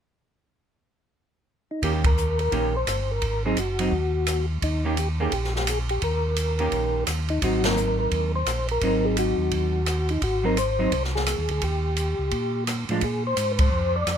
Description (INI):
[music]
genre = soul jazz organ trio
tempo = 172 BPM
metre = 4/4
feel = swing 62% on 8ths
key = unclear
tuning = A4 = 442 Hz
[part]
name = percussive tonewheel organ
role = melody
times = 1.7-14.2 s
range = Eb4 to D5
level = -27 LUFS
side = left 1 dB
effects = slow rotary speaker, chorus vibrato
[part]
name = vintage hollow-body jazz guitar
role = accompaniment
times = 1.8-13.0 s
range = Eb3 to G4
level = -27 LUFS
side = right 3 dB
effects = none
[part]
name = mellow tonewheel organ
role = bass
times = 1.8-14.2 s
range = Gb1 to Bb2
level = -26 LUFS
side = equal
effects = overdrive, chorus vibrato, slow rotary speaker
[part]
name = open jazz drum kit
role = drums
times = 1.8-14.2 s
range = hi-hat, kick drum, ride cymbal, rim click, snare drum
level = -28 LUFS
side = right 1 dB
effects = none
[sound]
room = little or no reverb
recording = close, detailed microphones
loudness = -22 LUFS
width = side -8 dB against mid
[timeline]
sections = 0.4-1.8 A section; 1.8-14.2 B section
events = band accent 2.0, 7.6, 13.5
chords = 0.4 N.C.; 1.8 Eb7; 3.2 Ab7; 4.6 Eb7; 7.4 Ab7; 11.6 Eb7; 13.0 Bb7(no3)